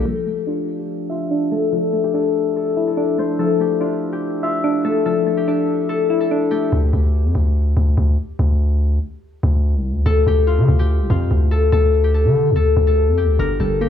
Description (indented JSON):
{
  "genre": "hip hop, drill",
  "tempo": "144 BPM",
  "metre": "4/4",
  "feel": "half-time",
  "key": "D minor",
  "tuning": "A4 = 438 Hz",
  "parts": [
    { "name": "concert harp", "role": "melody", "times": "0.0-13.9 s", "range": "F4 to C5", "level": "-20 LUFS", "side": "left 5 dB", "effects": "low-pass filter, digital delay" },
    { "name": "soft electric-piano-like synth keys", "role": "accompaniment", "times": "0.0-6.7, 13.4-13.9 s", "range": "D3 to E5", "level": "-20 LUFS", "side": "equal", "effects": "chorus, low-pass filter" },
    { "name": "long sustained 808-style bass", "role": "bass", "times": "0.0-0.1, 6.7-13.9 s", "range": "G1 to D3", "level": "-15 LUFS", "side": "equal", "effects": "none" }
  ],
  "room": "small room ambience",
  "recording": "small room reverb",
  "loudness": "-16 LUFS",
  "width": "side -9 dB against mid",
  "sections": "0.1-6.7 A section; 6.7-13.9 B section",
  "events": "filter sweep 0.1-6.7",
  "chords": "0.1 Dmadd9; 6.7 Dm"
}